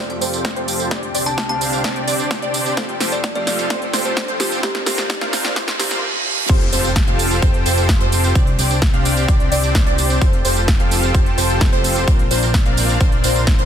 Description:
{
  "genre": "EDM, festival progressive house",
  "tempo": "129 BPM",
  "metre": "4/4",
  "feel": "straight",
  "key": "F major",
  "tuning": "A4 = 440 Hz",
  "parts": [
    { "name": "buzzing kalimba", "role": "melody", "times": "0.0-6.4 s", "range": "G4 to A5", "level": "-27 LUFS", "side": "equal", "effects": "ping-pong delay" },
    { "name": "lush unison pad", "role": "sustained chords", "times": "0.0-13.7 s", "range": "C2 to A4", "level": "-26 LUFS", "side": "left 1 dB", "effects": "chorus, sidechain pumping" },
    { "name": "wide unison pluck", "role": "arpeggios", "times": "0.0-13.7 s", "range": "C5 to F5", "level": "-26 LUFS", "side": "equal", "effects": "wide subtle chorus, sidechain pumping, ping-pong delay" },
    { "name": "dense compressed supersaw", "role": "riff", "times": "0.0-13.7 s", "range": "C4 to F5", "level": "-23 LUFS", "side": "equal", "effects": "cassette tape, sidechain pumping, low-pass filter, ping-pong delay" },
    { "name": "riser, reverse cymbal and impact", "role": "sound effects", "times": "3.4-8.4 s", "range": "none", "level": "-28 LUFS", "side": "right 3 dB", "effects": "none" },
    { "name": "big-room dance drum kit", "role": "drums", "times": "0.1-13.7 s", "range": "crash cymbal, hi-hat, snare drum, tambourine", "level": "-22 LUFS", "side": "right 1 dB", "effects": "none" },
    { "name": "electronic kick drum", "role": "drums", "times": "0.4-13.6 s", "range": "none", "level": "-17 LUFS", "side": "equal", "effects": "high-pass filter on kick, high-pass filter on room" },
    { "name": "fat analog bass", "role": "bass", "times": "6.5-13.7 s", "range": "F1 to C2", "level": "-20 LUFS", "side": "equal", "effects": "sidechain pumping" }
  ],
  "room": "little or no reverb",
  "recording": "dense, heavily limited modern master, high-pass filter",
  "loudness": "-15 LUFS",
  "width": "side -9 dB against mid",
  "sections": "0.0-6.5 A section; 6.5-13.7 B section",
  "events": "build-up 0.0-6.5; drum fill 0.0-6.0; filter sweep on supersaw synth 0.0-6.5; filter sweep on synth pluck 0.0-6.5; filter sweep 0.0-6.5; reverse cymbal 5.6-6.5; drop 6.5-13.7; impact 6.5-8.4",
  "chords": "0.0 Fadd9; 0.9 Csus2; 2.8 Fadd9; 4.6 Bbadd9; 6.5 Fadd9; 8.4 Csus2; 10.2 Fadd9; 12.1 Bbadd9",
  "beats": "0.45 | 0.91 1.38 1.84 2.31 | 2.77 3.24 3.70 4.17 | 4.63 5.10 5.56 6.03 | 6.49 6.96 7.42 7.89 | 8.36 8.82 9.29 9.75 | 10.21 10.68 11.14 11.61 | 12.08 12.54 13.01 13.47"
}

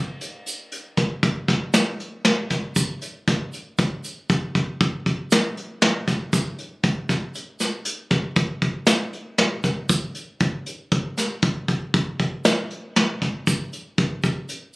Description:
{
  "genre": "progressive instrumental, progressive",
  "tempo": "118 BPM",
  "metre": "7/4",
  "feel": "straight",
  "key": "none",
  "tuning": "none",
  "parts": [
    { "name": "vintage brush drum kit", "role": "drums", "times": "0.2-14.6 s", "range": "hi-hat, kick drum, snare drum", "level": "-21 LUFS", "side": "equal", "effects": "none" },
    { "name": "tube shaker", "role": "percussion", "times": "0.2-14.6 s", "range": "none", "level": "-32 LUFS", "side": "right 3 dB", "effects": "none" }
  ],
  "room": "light reverb",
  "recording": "recorded on a phone in the room, club reverb",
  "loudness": "-21 LUFS",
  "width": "side -23 dB against mid",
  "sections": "0.0-14.8 A section",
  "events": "none",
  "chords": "none",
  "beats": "0.21 0.72 1.23 1.74 2.25 | 2.76 3.27 3.78 4.29 4.80 5.31 5.82 | 6.33 6.84 7.35 7.86 8.37 8.88 9.39 | 9.90 10.41 10.92 11.43 11.94 12.45 12.96 | 13.47 13.98 14.49"
}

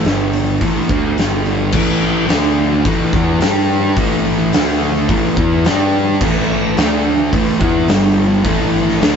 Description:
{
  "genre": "blues rock power trio and southern rock",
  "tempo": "107 BPM",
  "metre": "4/4",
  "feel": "straight",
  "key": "unclear",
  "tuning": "A4 = 440 Hz",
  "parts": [
    { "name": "biting lead guitar", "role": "melody", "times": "0.0-1.1 s", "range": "A4", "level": "-35 LUFS", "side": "left 1 dB", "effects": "none" },
    { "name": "thick fuzz guitar", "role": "riff", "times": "0.0-9.2 s", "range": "G2 to G4", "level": "-16 LUFS", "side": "equal", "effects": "distortion" },
    { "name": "fuzz picked electric bass", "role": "bass", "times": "0.0-9.2 s", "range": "G1 to G2", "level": "-19 LUFS", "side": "left 1 dB", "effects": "overdrive" },
    { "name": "oversized low-tuned drum kit", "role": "drums", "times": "0.0-9.1 s", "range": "crash cymbal, hi-hat, kick drum, snare drum", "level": "-17 LUFS", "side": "equal", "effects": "none" }
  ],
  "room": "light reverb",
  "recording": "band playing live in one room, nothing above 7.9 kHz",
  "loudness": "-12 LUFS",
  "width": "side -6 dB against mid",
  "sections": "0.0-1.7 A section; 1.7-9.2 B section",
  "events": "none",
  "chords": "0.1 G5; 0.6 A5; 1.2 G5; 1.7 A5; 2.3 D5; 2.9 A5; 3.4 G5; 4.0 A5; 4.5 D5; 5.1 A5; 5.7 G5; 6.2 A5; 6.8 D5; 7.3 A5; 7.9 G5; 8.4 A5",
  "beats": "0.06 0.62 1.18 | 1.74 2.30 2.86 3.42 | 3.98 4.53 5.09 5.65 | 6.21 6.77 7.33 7.89 | 8.45 9.00"
}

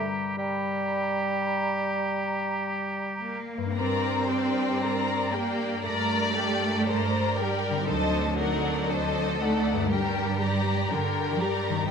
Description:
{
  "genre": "classical, slow romantic movement for symphony orchestra",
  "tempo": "50-62 BPM",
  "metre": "4/4",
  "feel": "rubato",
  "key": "G minor",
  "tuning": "A4 = 440 Hz",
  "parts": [
    { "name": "bright oboe", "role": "second line", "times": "0.0-3.4 s", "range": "G4", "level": "-31 LUFS", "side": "right 1 dB", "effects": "none" },
    { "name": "mellow large flute ensemble", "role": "second line", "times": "0.0-3.4 s", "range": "Bb5", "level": "-35 LUFS", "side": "equal", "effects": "none" },
    { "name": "warm clarinet", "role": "second line", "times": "0.0-3.4 s", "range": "G3", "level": "-34 LUFS", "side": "left 6 dB", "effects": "none" },
    { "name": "mellow bassoon", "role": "accompaniment", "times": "0.0-3.2 s", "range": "G3", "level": "-31 LUFS", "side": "right 4 dB", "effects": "none" },
    { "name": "concert harp", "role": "arpeggios", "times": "0.0-11.9 s", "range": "G2 to A4", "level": "-36 LUFS", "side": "left 9 dB", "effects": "none" },
    { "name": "rich chamber cello section", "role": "bass", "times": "3.2-11.9 s", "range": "D3 to C4", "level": "-29 LUFS", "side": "right 2 dB", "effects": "none" },
    { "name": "dark symphonic violin section", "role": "second line", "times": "3.7-11.9 s", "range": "Bb4 to Bb5", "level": "-31 LUFS", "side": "left 3 dB", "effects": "none" },
    { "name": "rich studio viola section", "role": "accompaniment", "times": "3.8-11.9 s", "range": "D4 to D5", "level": "-32 LUFS", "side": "left 1 dB", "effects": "none" },
    { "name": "clear symphonic double bass section", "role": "bass", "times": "3.8-11.9 s", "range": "D2 to G2", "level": "-32 LUFS", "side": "right 4 dB", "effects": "none" },
    { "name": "warm symphonic violin section", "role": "melody", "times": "5.8-11.9 s", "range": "G4 to D5", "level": "-31 LUFS", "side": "left 4 dB", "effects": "none" },
    { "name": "timpani", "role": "percussion", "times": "7.9-9.4 s", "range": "D3", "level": "-39 LUFS", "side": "right 2 dB", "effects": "none" }
  ],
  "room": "moderate scoring stage reverb, RT60 1.7 s",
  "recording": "none",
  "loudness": "-24 LUFS",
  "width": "side -6 dB against mid",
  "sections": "0.0-3.8 A section; 3.8-11.9 A section",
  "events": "none",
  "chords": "0.0 Gm; 7.9 D7b9; 9.9 Gm",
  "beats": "0.39 1.55 2.66 | 3.76 4.81 5.84 6.87 | 7.88 8.88 9.91 10.90 | 11.88"
}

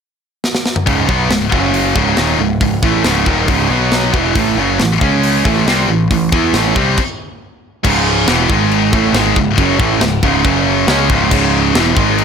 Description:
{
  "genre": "heavy metal",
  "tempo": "138 BPM",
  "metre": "4/4",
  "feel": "straight",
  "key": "C# minor",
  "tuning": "A4 = 442 Hz",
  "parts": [
    { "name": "tight metal drum kit", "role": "drums", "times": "0.4-12.2 s", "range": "china cymbal, crash cymbal, hi-hat, kick drum, snare drum, toms", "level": "-17 LUFS", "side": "left 1 dB", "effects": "none" },
    { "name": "distorted electric guitar", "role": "riff", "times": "0.9-12.2 s", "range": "C#2 to E4", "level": "-16 LUFS", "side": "right 12 dB", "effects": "distortion" },
    { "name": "heavy high-gain guitar", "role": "riff", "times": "0.9-12.2 s", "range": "C#2 to E4", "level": "-16 LUFS", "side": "left 13 dB", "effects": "distortion" },
    { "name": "growling picked electric bass", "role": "bass", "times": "0.9-12.2 s", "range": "C#1 to E2", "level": "-19 LUFS", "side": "left 1 dB", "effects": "overdrive" }
  ],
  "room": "small room ambience",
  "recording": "none",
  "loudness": "-11 LUFS",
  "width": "side -6 dB against mid",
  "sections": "0.9-7.8 A section; 7.8-12.2 B section",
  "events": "drum fill 0.4-0.9; stop 7.0-7.8",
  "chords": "0.0 N.C.; 0.9 C#5; 1.5 F#5; 2.0 C#m; 3.7 B5; 4.1 E5; 4.4 A5; 5.0 C#5; 5.5 A5; 7.0 N.C.; 7.8 C#m; 8.5 G#5; 8.9 C#m; 10.5 F#5; 10.9 C#m",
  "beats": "0.43 | 0.87 1.30 1.74 2.18 | 2.61 3.05 3.49 3.92 | 4.36 4.79 5.23 5.67 | 6.10 6.54 6.98 7.41 | 7.85 8.28 8.72 9.15 | 9.58 10.02 10.45 10.88 | 11.32 11.75 12.19"
}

